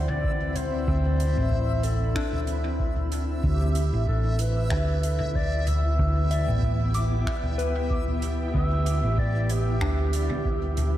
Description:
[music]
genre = ambient dub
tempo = 94 BPM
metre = 4/4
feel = swing 54% on 16ths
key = unclear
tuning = A4 = 441 Hz
[part]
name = dark clarinet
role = melody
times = 0.0-11.0 s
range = G4 to E5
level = -33 LUFS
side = equal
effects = dub echo
[part]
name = granular cloud pad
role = sustained chords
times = 0.0-11.0 s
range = B3 to B5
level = -34 LUFS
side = left 1 dB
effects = built-in reverb
[part]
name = soft synth bell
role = arpeggios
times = 0.0-11.0 s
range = B3 to D6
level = -36 LUFS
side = left 4 dB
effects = chorus, phaser, dub echo
[part]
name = hollow-body short-scale fingered electric bass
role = bass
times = 0.0-11.0 s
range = A1 to D2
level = -24 LUFS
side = equal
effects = tube saturation
[part]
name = backwards swelling texture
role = texture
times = 0.0-11.0 s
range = E5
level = -36 LUFS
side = left 1 dB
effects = built-in reverb
[part]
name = soft-mallet drum kit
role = drums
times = 0.1-10.9 s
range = finger snaps, hi-hat, toms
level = -30 LUFS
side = equal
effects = none
[part]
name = electronic kick drum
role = drums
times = 0.2-10.6 s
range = none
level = -30 LUFS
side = equal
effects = none
[sound]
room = light reverb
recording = none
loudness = -23 LUFS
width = side -13 dB against mid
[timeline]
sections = 0.0-11.0 A section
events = none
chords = 0.0 D9; 3.4 Em

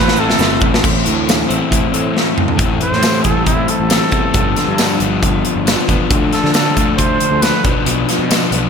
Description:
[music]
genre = indie rock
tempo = 137 BPM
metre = 4/4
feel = straight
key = A minor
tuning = A4 = 441 Hz
[part]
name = warm trumpet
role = melody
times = 0.0-7.6 s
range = E4 to C5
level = -20 LUFS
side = right 1 dB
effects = slapback echo
[part]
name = overdriven semi-hollow guitar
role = riff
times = 0.0-8.7 s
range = G2 to E4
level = -18 LUFS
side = left 10 dB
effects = slapback echo
[part]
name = twelve-string electric guitar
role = riff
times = 0.0-8.7 s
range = G2 to A4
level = -22 LUFS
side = right 7 dB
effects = analog chorus, slapback echo
[part]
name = fuzz picked electric bass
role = bass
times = 0.0-8.7 s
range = G1 to D3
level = -20 LUFS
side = right 1 dB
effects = overdrive
[part]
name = big rock drum kit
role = drums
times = 0.1-8.6 s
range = crash cymbal, hi-hat, kick drum, snare drum, tambourine, toms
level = -16 LUFS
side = equal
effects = none
[part]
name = tube shaker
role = percussion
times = 0.2-0.7 s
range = none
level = -32 LUFS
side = right 16 dB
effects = none
[sound]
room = moderate concert hall reverb, RT60 2.3 s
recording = big arena sound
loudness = -12 LUFS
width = side -6 dB against mid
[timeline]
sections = 0.8-2.6 A section; 2.6-8.7 B section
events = drum fill 0.0-0.8, 2.2-2.6; trumpet solo 2.6-8.7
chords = 0.0 Am; 2.6 Am7; 4.4 G7; 6.1 Dm; 7.6 Bdim

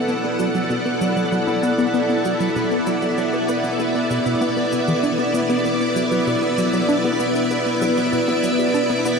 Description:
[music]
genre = ambient, sequencer-driven space music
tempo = 97 BPM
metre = 4/4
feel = straight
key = B minor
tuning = A4 = 440 Hz
[part]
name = string machine, full ensemble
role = sustained chords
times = 0.0-9.2 s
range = B3 to F#5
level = -19 LUFS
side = equal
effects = ensemble chorus
[part]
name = pulsing gated texture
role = texture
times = 0.0-9.2 s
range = D5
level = -30 LUFS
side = right 5 dB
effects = chorus, built-in reverb
[part]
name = tight sequenced synth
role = riff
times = 0.1-9.1 s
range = B2 to D4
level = -23 LUFS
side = left 1 dB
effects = chorus, phaser, ping-pong delay
[part]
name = cabasa and bongos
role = percussion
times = 0.1-9.2 s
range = none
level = -37 LUFS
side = left 2 dB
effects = ping-pong delay
[sound]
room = wet huge ambient reverb, RT60 8.1 s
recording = dreamy mix soaked in reverb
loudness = -17 LUFS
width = side -5 dB against mid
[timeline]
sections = 0.0-9.2 A section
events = fade-in on drum 0.0-9.2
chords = 0.0 Bm

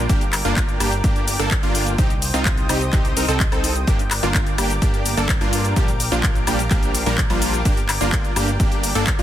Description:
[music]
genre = EDM, festival progressive house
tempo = 127 BPM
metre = 4/4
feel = straight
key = G minor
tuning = A4 = 440 Hz
[part]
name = lush unison pad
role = sustained chords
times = 0.0-9.2 s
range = Bb4 to Eb6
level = -29 LUFS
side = equal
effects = chorus, sidechain pumping
[part]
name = supersaw stab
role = riff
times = 0.0-9.2 s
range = F3 to Bb4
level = -23 LUFS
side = equal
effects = sidechain pumping, digital delay
[part]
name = fat analog bass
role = bass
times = 0.0-9.2 s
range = G1 to G2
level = -24 LUFS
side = equal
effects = sidechain pumping
[part]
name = electronic kick drum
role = drums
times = 0.1-9.2 s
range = none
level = -20 LUFS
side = equal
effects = none
[part]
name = house drum kit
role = drums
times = 0.1-9.2 s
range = handclaps, hi-hat, shaker, woodblock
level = -24 LUFS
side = left 2 dB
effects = none
[sound]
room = little or no reverb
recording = dense, heavily limited modern master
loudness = -17 LUFS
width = side -12 dB against mid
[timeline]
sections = 0.0-9.2 A section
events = none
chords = 0.1 Gm; 2.0 Cm; 3.9 Gm; 5.8 Bb6; 7.7 Gm

